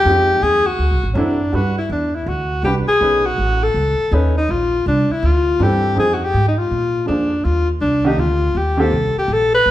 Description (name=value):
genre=jazz, small-group swing and bop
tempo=162 BPM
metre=4/4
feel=swing 65% on 8ths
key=unclear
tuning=A4 = 439 Hz
part: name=warm alto saxophone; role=melody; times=0.0-9.7 s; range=C#4 to B4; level=-17 LUFS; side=left 2 dB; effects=none
part: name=upright bass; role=bass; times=0.0-9.7 s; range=A1 to Bb2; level=-19 LUFS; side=right 1 dB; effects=none
part: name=clear upright piano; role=accompaniment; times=0.1-8.9 s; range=Eb3 to B4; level=-22 LUFS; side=right 1 dB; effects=none
room=moderate large studio reverb, RT60 1.3 s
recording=band playing live in one room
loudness=-15 LUFS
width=side -14 dB against mid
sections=0.0-1.5 A section; 1.5-9.7 B section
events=none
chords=0.1 Fm9; 0.8 D7; 1.5 Gmaj7; 3.0 B9; 4.5 Bbmaj9#11; 6.0 Fm7; 6.7 Bb7; 7.4 Ebmaj7; 8.9 Am7